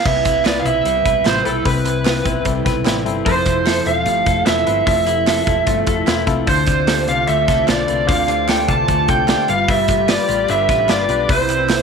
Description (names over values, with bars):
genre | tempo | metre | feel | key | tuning
jangly indie pop | 150 BPM | 4/4 | straight | C major | A4 = 438 Hz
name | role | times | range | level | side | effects
lead guitar through a small cranked amp | melody | 0.0-11.8 s | A4 to A5 | -17 LUFS | right 3 dB | overdrive, slapback echo
picked twelve-string acoustic guitar | accompaniment | 0.1-11.8 s | G2 to F4 | -27 LUFS | right 10 dB | none
reed electric piano | accompaniment | 0.1-11.8 s | C4 to A5 | -26 LUFS | left 13 dB | none
clean electric guitar | arpeggios | 0.1-11.8 s | C3 to B4 | -23 LUFS | left 11 dB | slapback echo
hollow-body short-scale fingered electric bass | bass | 0.1-11.8 s | E1 to D2 | -25 LUFS | left 1 dB | none
big rock drum kit | drums | 0.1-11.8 s | crash cymbal, hi-hat, kick drum, snare drum | -20 LUFS | right 2 dB | none
group handclap | percussion | 0.3-11.8 s | none | -33 LUFS | right 9 dB | none
warm analog pad | sustained chords | 6.5-11.8 s | C4 to E6 | -30 LUFS | left 1 dB | chorus
room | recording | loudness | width
light reverb, small room ambience | 1960s-style stereo with parts hard left and right | -14 LUFS | side -6 dB against mid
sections
0.1-11.8 A section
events
reed electric piano fill 5.7-6.5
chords
0.1 Cmaj7; 3.3 Fmaj7; 6.5 Dm7; 9.5 G7; 11.3 Cmaj7